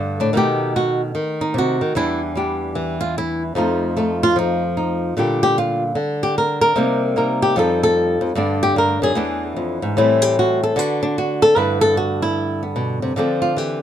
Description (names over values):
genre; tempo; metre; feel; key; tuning
solo jazz; 150 BPM; 4/4; swing 65% on 8ths; unclear; A4 = 440 Hz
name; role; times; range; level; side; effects
flamenco guitar; solo; 0.0-13.8 s; E2 to B4; -16 LUFS; equal; none
room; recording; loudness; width
little or no reverb; close, detailed microphones; -16 LUFS; side -10 dB against mid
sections
0.0-11.6 A section; 11.6-13.8 A section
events
nylon-string guitar solo 0.0-13.8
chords
0.3 B7; 1.9 Em7; 3.5 F7; 5.2 Bb6; 6.8 Cm7; 7.6 F9; 8.4 Gmaj7; 9.2 E7b9; 10.0 Am7; 10.8 D; 11.6 G6; 13.2 Dm9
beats
| 0.33 0.73 1.14 1.54 | 1.94 2.34 2.74 3.15 | 3.55 3.95 4.35 4.75 | 5.15 5.55 5.96 6.36 | 6.76 7.16 7.56 7.96 | 8.36 8.76 9.15 9.55 | 9.95 10.35 10.75 11.15 | 11.55 11.95 12.35 12.75 | 13.15 13.55